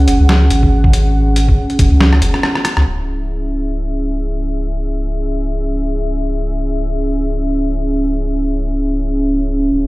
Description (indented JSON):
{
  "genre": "deep dubstep",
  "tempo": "140 BPM",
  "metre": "4/4",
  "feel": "swing 57% on 16ths, half-time",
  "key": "C# minor",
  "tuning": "A4 = 442 Hz",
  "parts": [
    { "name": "dark analog pad", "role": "sustained chords", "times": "0.0-9.9 s", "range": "C#4 to G#5", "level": "-18 LUFS", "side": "right 1 dB", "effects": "chorus" },
    { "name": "soft dub sub bass", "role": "bass", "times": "0.0-9.9 s", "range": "C#1 to C#2", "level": "-15 LUFS", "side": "equal", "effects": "none" },
    { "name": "trip hop sampler-style drum kit", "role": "drums", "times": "0.1-2.8 s", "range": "hi-hat, rim click, snare drum", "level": "-18 LUFS", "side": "equal", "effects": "low-pass filter on hats, low-pass filter on snare, low-pass filter on room" },
    { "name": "electronic kick drum", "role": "drums", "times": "0.6-1.9 s", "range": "none", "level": "-13 LUFS", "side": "equal", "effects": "none" }
  ],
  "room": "digital ambience",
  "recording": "played on a big sound system in a bare room, stone room reverb",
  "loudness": "-13 LUFS",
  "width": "side -20 dB against mid",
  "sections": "0.0-2.9 A section; 2.9-9.9 B section",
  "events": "drum fill 2.0-2.9",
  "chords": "0.0 C#5; 2.9 C#m",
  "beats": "0.29 0.72 | 1.15 1.58 2.01 2.43 | 2.86 3.29 3.72 4.15 | 4.58 5.01 5.43 5.86 | 6.29 6.72 7.15 7.58 | 8.01 8.43 8.86 9.29 | 9.72"
}